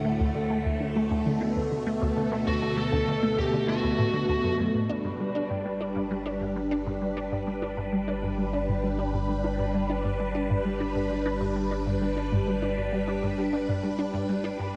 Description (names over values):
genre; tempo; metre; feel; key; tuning
ambient, sequencer-driven space music; 99 BPM; 4/4; straight; unclear; A4 = 440 Hz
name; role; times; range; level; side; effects
phased string machine; sustained chords; 0.0-14.8 s; D2 to B4; -31 LUFS; equal; ensemble chorus, phaser
resonant blip pluck; riff; 0.0-14.7 s; D2 to D4; -32 LUFS; equal; phaser, ensemble chorus, analog delay
biting lead guitar; melody; 2.5-4.6 s; F#4 to A4; -35 LUFS; equal; overdrive, analog delay
round analog bass; bass; 4.9-14.8 s; G1; -37 LUFS; equal; none
room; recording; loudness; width
wet lush hall reverb, RT60 2.6 s; dreamy mix soaked in reverb; -28 LUFS; mono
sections
0.0-4.9 A section; 4.9-14.8 B section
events
filter sweep on synth arpeggio sound 0.0-4.9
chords
0.0 D; 4.9 G